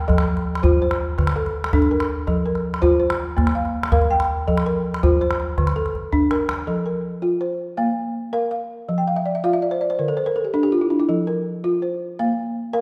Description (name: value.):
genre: west african traditional, West African string and xylophone music.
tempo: 109 BPM (dotted quarters).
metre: 12/8.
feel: straight.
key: F major.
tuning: A4 = 442 Hz.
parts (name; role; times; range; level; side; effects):
balafon; arpeggios; 0.0-12.8 s; D3 to G5; -22 LUFS; equal; none.
calabash; percussion; 0.1-6.7 s; none; -24 LUFS; equal; none.
room: wet scoring stage reverb, RT60 1.6 s.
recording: recorded in a church or concert hall.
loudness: -21 LUFS.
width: mono.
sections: 0.0-6.7 A section; 6.7-12.8 B section.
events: drum fill 5.9-6.7; balafon fill 9.0-11.1.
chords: 0.1 F; 1.2 D5; 2.3 F; 3.4 Bb5; 4.5 F; 5.6 D5; 6.7 F; 7.8 Bb5; 8.9 N.C.; 11.1 F; 12.2 Bb5.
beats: | 0.09 0.63 1.18 1.73 | 2.28 2.83 3.38 3.93 | 4.48 5.03 5.58 6.13 | 6.68 7.23 7.78 8.34 | 8.89 9.44 9.99 10.54 | 11.09 11.64 12.19 12.74.